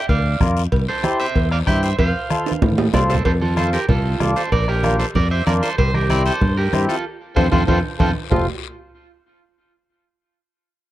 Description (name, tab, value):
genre	latin, cumbia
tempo	190 BPM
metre	4/4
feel	straight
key	F major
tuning	A4 = 438 Hz
part	electric guitar at the edge of break-up	melody	0.0-8.5 s	F4 to G5	-24 LUFS	right 3 dB	spring reverb
part	fingered electric bass	bass	0.1-8.5 s	F1 to A2	-20 LUFS	equal	none
part	bombo	percussion	0.1-8.4 s	none	-23 LUFS	left 2 dB	none
part	congas	percussion	0.1-8.4 s	none	-25 LUFS	right 2 dB	none
part	cowbell and timbales	percussion	0.1-8.4 s	none	-26 LUFS	right 5 dB	none
part	guiro	percussion	0.1-8.4 s	none	-36 LUFS	left 17 dB	none
part	mellow accordion	accompaniment	0.4-8.5 s	C4 to D5	-21 LUFS	left 1 dB	none
room	light reverb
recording	dry, close 1970s-style studio recording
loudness	-16 LUFS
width	side -14 dB against mid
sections	0.0-3.3 A section; 3.3-8.3 B section; 8.3-9.6 C section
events	drum fill 2.3-3.3, 7.1-8.3; band accent 7.1-8.3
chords	0.0 Bb; 0.7 C; 2.0 F; 4.5 Bb; 5.8 C7; 7.1 F